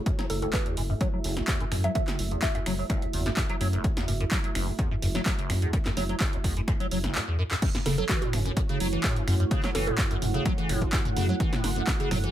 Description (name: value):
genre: acid house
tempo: 127 BPM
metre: 4/4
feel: straight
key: F# minor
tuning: A4 = 439 Hz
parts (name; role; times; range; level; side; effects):
- dark analog pad; sustained chords; 0.0-12.3 s; A3 to F#5; -36 LUFS; right 3 dB; chorus, sidechain pumping
- liquid acid bass; riff; 0.1-12.3 s; F#1 to F#3; -31 LUFS; equal; phaser, overdrive, ensemble chorus, sidechain pumping, digital delay
- electronic kick drum; drums; 0.1-12.0 s; none; -28 LUFS; equal; overdrive
- punchy analog drum machine; drums; 0.1-12.3 s; crash cymbal, finger snaps, handclaps, hi-hat, snare drum, toms; -32 LUFS; equal; overdrive
- mallet-like synth pluck; melody; 0.3-2.6, 7.9-9.9 s; F#4 to E5; -35 LUFS; right 2 dB; chorus, phaser, tape echo
- round analog bass; bass; 0.3-12.3 s; F#1 to F#2; -29 LUFS; equal; sidechain pumping
- deep dark ambient pad; texture; 8.8-12.3 s; A3 to F#5; -36 LUFS; right 3 dB; chorus, built-in reverb, sidechain pumping
room: light reverb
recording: none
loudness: -24 LUFS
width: side -12 dB against mid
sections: 0.0-7.6 A section; 7.6-12.3 B section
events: filter sweep on acid bass 0.0-7.6; drum fill 7.2-7.6; drop 7.6-12.3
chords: 0.0 F#m7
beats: | 0.06 0.54 1.01 1.48 | 1.95 2.43 2.90 3.37 | 3.84 4.32 4.79 5.26 | 5.73 6.21 6.68 7.15 | 7.62 8.10 8.57 9.04 | 9.51 9.98 10.46 10.93 | 11.40 11.88